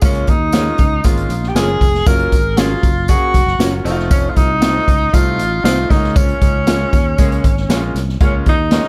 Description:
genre	uptempo 1960s-style soul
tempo	117 BPM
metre	4/4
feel	straight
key	Db major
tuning	A4 = 440 Hz
part	warm tenor saxophone	melody	0.0-8.9 s	Db4 to Bb4	-21 LUFS	equal	analog delay
part	bright grand piano	accompaniment	0.0-8.9 s	Gb3 to Ab4	-25 LUFS	equal	none
part	fingered electric bass	bass	0.0-8.8 s	F1 to Eb2	-22 LUFS	equal	none
part	swinging big-band drum kit	drums	0.0-8.8 s	hi-hat, kick drum, snare drum	-17 LUFS	equal	none
part	tambourine	percussion	0.0-8.1 s	none	-36 LUFS	equal	none
part	mellow electric guitar	stabs	0.5-8.8 s	Bb3 to Db5	-26 LUFS	equal	analog chorus
room	little or no reverb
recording	none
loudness	-14 LUFS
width	mono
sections	0.0-8.2 A section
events	none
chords	0.0 Db6; 2.1 Gbmaj7; 3.9 F7; 5.9 Db6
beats	| 0.02 0.53 1.04 1.56 | 2.07 2.58 3.09 3.60 | 4.11 4.62 5.13 5.65 | 6.16 6.67 7.18 7.69 | 8.21 8.72

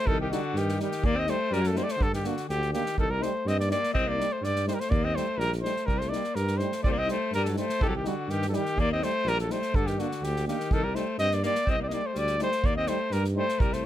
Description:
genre	balkan folk, Balkan brass band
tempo	124 BPM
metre	2/4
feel	straight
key	C dorian sharp4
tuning	A4 = 442 Hz
part	mellow cornet	melody	0.0-13.9 s	F#4 to Eb5	-29 LUFS	equal	none
part	clear alto saxophone	second line	0.0-13.9 s	D3 to C4	-33 LUFS	left 5 dB	none
part	mellow tuba	bass	0.1-13.9 s	Bb1 to G2	-31 LUFS	right 1 dB	none
part	unplugged drum kit	percussion	0.1-13.8 s	kick drum, snare drum	-31 LUFS	right 1 dB	none
part	clear euphonium	accompaniment	0.3-13.5 s	G3 to Bb3	-36 LUFS	right 10 dB	none
part	mellow trombone	accompaniment	0.3-13.9 s	D4 to Eb4	-37 LUFS	left 10 dB	none
room	little or no reverb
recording	close, detailed microphones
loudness	-25 LUFS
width	side -12 dB against mid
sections	0.0-6.8 A section; 6.8-13.9 A section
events	none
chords	0.0 Cm; 1.0 Eb; 2.0 Gm; 3.0 Cm; 4.9 Eb; 5.9 Cm; 8.8 Eb; 9.7 Gm; 10.7 Cm; 12.6 Eb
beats	| 0.07 0.55 | 1.04 1.52 | 2.00 2.49 | 2.97 3.45 | 3.94 4.42 | 4.90 5.39 | 5.87 6.35 | 6.84 7.32 | 7.80 8.28 | 8.77 9.25 | 9.73 10.21 | 10.70 11.18 | 11.66 12.15 | 12.63 13.11 | 13.60

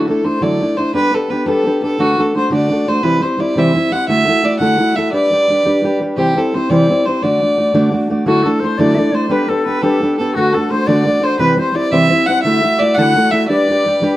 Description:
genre	celtic folk, Celtic jig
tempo	115 BPM (dotted quarters)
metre	6/8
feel	straight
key	D mixolydian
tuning	A4 = 440 Hz
part	warm fiddle	melody	0.0-14.2 s	F#4 to F#5	-16 LUFS	equal	plate reverb
part	fingerpicked steel-string acoustic guitar	accompaniment	0.0-14.2 s	C3 to D5	-15 LUFS	equal	none
part	bright wooden flute	second line	8.2-13.9 s	F#4 to A5	-21 LUFS	left 4 dB	plate reverb
room	moderate studio reverb, RT60 0.6 s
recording	rough home demo mix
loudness	-12 LUFS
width	side -15 dB against mid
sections	0.0-8.3 A section; 8.3-14.2 A section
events	none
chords	0.0 Dadd9; 0.9 Gadd9; 2.0 D; 3.0 C; 4.1 Dadd9; 5.1 G; 6.2 C; 7.2 D; 8.3 Dadd9; 9.3 Gadd9; 10.3 D; 11.4 C; 12.4 Dadd9; 13.5 G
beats	0.42 | 0.94 1.46 | 1.99 2.51 | 3.03 3.55 | 4.08 4.60 | 5.12 5.64 | 6.16 6.69 | 7.21 7.73 | 8.25 8.78 | 9.30 9.82 | 10.34 10.87 | 11.39 11.91 | 12.44 12.96 | 13.49 14.01

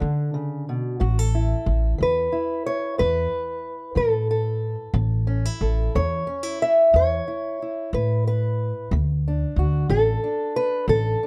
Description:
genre	acoustic country blues, solo or duo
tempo	61 BPM (dotted quarters)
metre	12/8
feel	straight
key	unclear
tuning	A4 = 441 Hz
part	fingerpicked old ladder-braced acoustic guitar	melody	0.0-11.3 s	A2 to E5	-25 LUFS	equal	none
part	upright bass	bass	0.0-11.1 s	A1 to D3	-25 LUFS	equal	none
room	light reverb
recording	dark, warm production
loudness	-23 LUFS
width	mono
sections	0.0-11.3 A section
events	none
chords	0.0 D; 1.0 A; 8.9 D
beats	0.03 | 1.01 2.00 2.99 3.98 | 4.96 5.95 6.94 7.92 | 8.91 9.90 10.88

